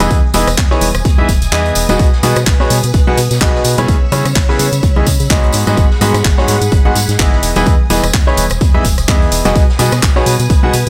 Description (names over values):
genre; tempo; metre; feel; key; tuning
piano house; 127 BPM; 4/4; swing 56% on 16ths; unclear; A4 = 436 Hz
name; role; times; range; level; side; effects
string machine, violins; sustained chords; 0.0-10.9 s; G#4 to E6; -26 LUFS; equal; ensemble chorus, sidechain pumping
bright grand piano; riff; 0.0-10.7 s; G#2 to F#5; -18 LUFS; equal; sidechain pumping
organ-like FM bass; bass; 0.0-10.9 s; E1 to C#3; -19 LUFS; equal; sidechain pumping
house drum kit; drums; 0.0-10.9 s; handclaps, hi-hat, rim click; -22 LUFS; equal; none
raw garage drum kit; drums; 0.0-10.9 s; hi-hat, snare drum; -31 LUFS; equal; none
tambourine and congas; percussion; 0.0-10.9 s; none; -24 LUFS; equal; none
electronic kick drum; drums; 0.1-10.6 s; none; -14 LUFS; equal; none
room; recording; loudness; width
little or no reverb; none; -12 LUFS; mono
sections
0.0-10.9 A section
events
kick drops out 1.5-2.0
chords
0.0 Emaj7; 2.0 B6; 3.9 C#m7; 5.5 G#m7; 7.4 Emaj7; 9.6 B6